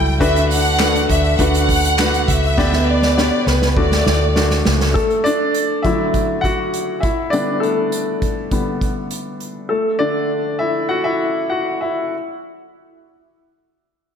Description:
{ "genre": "piano-driven pop", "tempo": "101 BPM", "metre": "4/4", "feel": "straight", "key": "D major", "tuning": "A4 = 441 Hz", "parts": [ { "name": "warm studio violin section", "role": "melody", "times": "0.0-4.6 s", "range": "B4 to G5", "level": "-19 LUFS", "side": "equal", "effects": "slapback echo" }, { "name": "clear baby grand piano", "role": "accompaniment", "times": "0.0-12.2 s", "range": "D3 to F#5", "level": "-18 LUFS", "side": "left 2 dB", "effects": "slapback echo" }, { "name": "vintage muted fingered electric bass", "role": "bass", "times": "0.0-4.9 s", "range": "C#2 to D2", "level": "-18 LUFS", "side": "right 1 dB", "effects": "none" }, { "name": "unplugged drum kit", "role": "drums", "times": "0.1-9.5 s", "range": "handclaps, hi-hat, kick drum, snare drum", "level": "-21 LUFS", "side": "right 1 dB", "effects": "none" }, { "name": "mellow French horn section", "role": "second line", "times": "0.2-4.6 s", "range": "A2 to D4", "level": "-25 LUFS", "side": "right 4 dB", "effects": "slapback echo" } ], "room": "wet lush hall reverb, RT60 1.9 s, studio reverb", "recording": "big arena sound", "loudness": "-15 LUFS", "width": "side -7 dB against mid", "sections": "0.0-5.0 A section; 5.0-14.2 B section", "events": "drum fill 2.6-5.0; grand piano solo 5.0-14.2; slowing down 9.7-14.2", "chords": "0.2 Bm7/D; 2.6 G/D; 3.8 D; 5.0 Dadd9; 7.0 Em/D; 9.7 Dadd9; 12.1 N.C." }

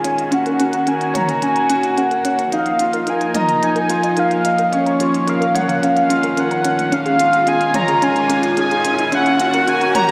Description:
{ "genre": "piano and strings electronica", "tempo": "109 BPM", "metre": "4/4", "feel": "straight", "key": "Eb minor", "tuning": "A4 = 441 Hz", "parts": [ { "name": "warm velvety synth lead", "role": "melody", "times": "0.0-10.1 s", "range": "Db5 to Bb5", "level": "-20 LUFS", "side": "equal", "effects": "chorus" }, { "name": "rich studio string section", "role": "sustained chords", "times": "0.0-10.1 s", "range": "Eb3 to Gb4", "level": "-26 LUFS", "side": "equal", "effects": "low-pass filter" }, { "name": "soft round pluck", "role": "arpeggios", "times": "0.0-10.1 s", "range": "Db4 to Bb5", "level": "-27 LUFS", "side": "equal", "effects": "none" }, { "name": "warm upright piano", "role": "riff", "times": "0.0-10.1 s", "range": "Db4 to Eb5", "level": "-23 LUFS", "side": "equal", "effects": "analog delay" }, { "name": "minimal click drum kit", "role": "drums", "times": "0.0-10.1 s", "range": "hi-hat, toms", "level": "-31 LUFS", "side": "equal", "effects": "none" }, { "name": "riser", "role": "sound effects", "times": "6.8-10.1 s", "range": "none", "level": "-29 LUFS", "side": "equal", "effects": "none" } ], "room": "wet lush hall reverb, RT60 1.9 s, digital ambience", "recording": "dreamy mix soaked in reverb", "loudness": "-17 LUFS", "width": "mono", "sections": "0.0-10.1 A section", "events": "build-up 0.0-10.1; riser 6.8-10.1", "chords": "0.3 Gb/Eb; 2.5 Ebsus2; 4.7 Bbm/Eb; 6.9 Db/Eb; 9.1 Gb/Eb" }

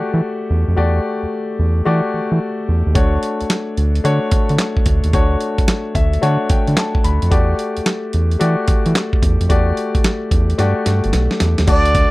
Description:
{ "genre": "R&B, new jack swing", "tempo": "110 BPM", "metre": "4/4", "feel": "swing 66% on 16ths", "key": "E dorian", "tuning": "A4 = 440 Hz", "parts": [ { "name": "warm baby grand piano", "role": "accompaniment", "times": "0.0-12.1 s", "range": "A3 to B5", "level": "-20 LUFS", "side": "left 2 dB", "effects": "none" }, { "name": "round analog bass", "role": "bass", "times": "0.0-12.1 s", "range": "G1 to E3", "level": "-16 LUFS", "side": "equal", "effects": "none" }, { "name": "dusty soul sampler-style drum kit", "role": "drums", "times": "3.0-12.1 s", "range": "crash cymbal, handclaps, hi-hat, kick drum, snare drum", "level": "-16 LUFS", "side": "equal", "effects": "none" }, { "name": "trumpet with plunger mute", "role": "melody", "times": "11.7-12.1 s", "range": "D5", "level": "-15 LUFS", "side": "right 2 dB", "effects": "none" }, { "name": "cowbell", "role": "percussion", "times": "11.7-11.8 s", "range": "none", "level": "barely audible", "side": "none", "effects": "none" } ], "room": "little or no reverb", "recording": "dry, close 1970s-style studio recording", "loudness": "-14 LUFS", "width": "side -20 dB against mid", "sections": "0.0-11.7 A section", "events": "grand piano fill 5.7-7.3; drum fill 10.6-11.7", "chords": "0.0 Em11; 3.0 Dmaj7; 7.3 Em11" }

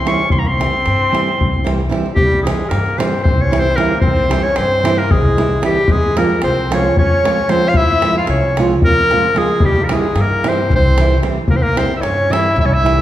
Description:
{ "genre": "balkan folk, Balkan wedding band", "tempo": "225 BPM (eighths)", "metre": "7/8", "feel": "straight", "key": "C phrygian dominant", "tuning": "A4 = 440 Hz", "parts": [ { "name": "bright clarinet", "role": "melody", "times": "0.0-13.0 s", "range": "G4 to Db6", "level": "-16 LUFS", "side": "left 1 dB", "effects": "none" }, { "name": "mellow trumpet", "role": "second line", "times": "0.0-13.0 s", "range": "G3 to F4", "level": "-23 LUFS", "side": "left 2 dB", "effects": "none" }, { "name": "nylon-string guitar", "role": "accompaniment", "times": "0.1-13.0 s", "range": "E3 to F4", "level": "-20 LUFS", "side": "right 3 dB", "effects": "none" }, { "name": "davul", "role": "percussion", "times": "0.1-13.0 s", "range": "none", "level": "-19 LUFS", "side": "left 1 dB", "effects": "none" }, { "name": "upright bass", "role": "bass", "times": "0.3-13.0 s", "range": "C2 to G2", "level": "-19 LUFS", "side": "equal", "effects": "none" } ], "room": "wet recital hall reverb, RT60 1.7 s", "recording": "recorded in a church or concert hall", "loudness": "-12 LUFS", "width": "side -13 dB against mid", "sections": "0.0-2.2 A section; 2.2-13.0 B section", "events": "none", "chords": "0.0 C; 5.9 Fm; 9.6 C" }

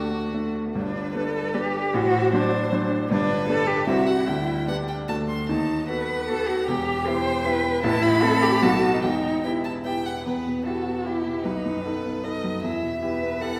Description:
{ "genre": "quick classical-period movement for piano trio", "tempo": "152 BPM", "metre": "3/4", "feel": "rubato", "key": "G major, E minor from 5.5 s", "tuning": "A4 = 445 Hz", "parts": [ { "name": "clear violin", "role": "melody", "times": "0.0-13.6 s", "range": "F#4 to C6", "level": "-33 LUFS", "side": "equal", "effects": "none" }, { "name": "bright baby grand piano", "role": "accompaniment", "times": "0.0-13.6 s", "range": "E1 to C5", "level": "-28 LUFS", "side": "equal", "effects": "none" }, { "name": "rich cello", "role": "second line", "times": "0.2-13.6 s", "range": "A3 to C5", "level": "-28 LUFS", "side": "equal", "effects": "none" } ], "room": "wet scoring stage reverb, RT60 1.6 s", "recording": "heard from further back in the room", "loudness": "-24 LUFS", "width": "mono", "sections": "0.8-10.3 A section; 10.3-13.6 B section", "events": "none", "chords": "0.0 D; 0.8 G; 1.9 D7/A; 3.1 G; 3.9 C; 4.3 G/D; 5.1 D; 5.5 B7/D#; 6.7 Em; 7.8 Am; 8.6 B7; 9.0 Em; 11.4 B7; 12.6 Em" }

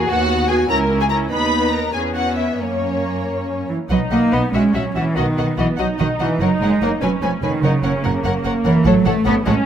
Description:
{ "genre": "quick classical-period movement for string orchestra", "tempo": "97 BPM (dotted quarters)", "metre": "6/8", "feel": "rubato", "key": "B major", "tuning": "A4 = 439 Hz", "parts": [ { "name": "muted studio violin section", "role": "second line", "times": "0.0-9.5 s", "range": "C#4 to E5", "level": "-25 LUFS", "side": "left 2 dB", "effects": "none" }, { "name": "muted studio viola section", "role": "accompaniment", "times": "0.0-9.7 s", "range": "A3 to F#4", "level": "-22 LUFS", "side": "right 1 dB", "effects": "none" }, { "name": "muted studio violin section", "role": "melody", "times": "0.1-9.5 s", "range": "C#5 to B5", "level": "-24 LUFS", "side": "left 4 dB", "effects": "none" }, { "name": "muted studio cello section", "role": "bass", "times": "0.1-9.5 s", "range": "C#2 to B3", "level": "-19 LUFS", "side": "right 2 dB", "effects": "none" }, { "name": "muted studio double bass section", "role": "bass", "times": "3.9-9.5 s", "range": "E#1 to B1", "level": "-22 LUFS", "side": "right 2 dB", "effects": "none" } ], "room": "light reverb", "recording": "close, detailed microphones", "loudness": "-16 LUFS", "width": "side -9 dB against mid", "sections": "0.0-3.9 A section; 3.9-9.7 B section", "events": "none", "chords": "0.1 B/D#; 0.7 A#dim/C#; 1.3 B/D#; 1.9 C#m7/E; 2.6 F#; 3.9 B; 4.5 F#7/A#; 5.2 B; 6.4 F#; 7.0 C#7; 7.6 F#; 8.9 F#m/A" }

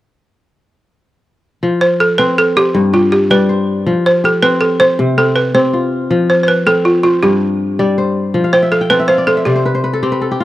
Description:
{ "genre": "west african traditional", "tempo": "107 BPM (dotted quarters)", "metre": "12/8", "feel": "straight", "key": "F lydian", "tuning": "A4 = 439 Hz", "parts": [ { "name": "kora", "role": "arpeggios", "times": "1.6-10.4 s", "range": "G2 to A5", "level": "-14 LUFS", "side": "left 2 dB", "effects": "none" }, { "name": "balafon", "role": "melody", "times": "1.8-10.4 s", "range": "F4 to C5", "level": "-12 LUFS", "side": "right 1 dB", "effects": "none" } ], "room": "light reverb, small room ambience", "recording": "dry, close 1970s-style studio recording", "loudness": "-11 LUFS", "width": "side -15 dB against mid", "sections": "1.6-10.4 A section", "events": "kora fill 8.4-10.4", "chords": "1.6 F5; 2.7 G; 3.9 F5; 5.0 C5; 6.1 F5; 7.2 G5; 8.3 F5; 9.5 N.C." }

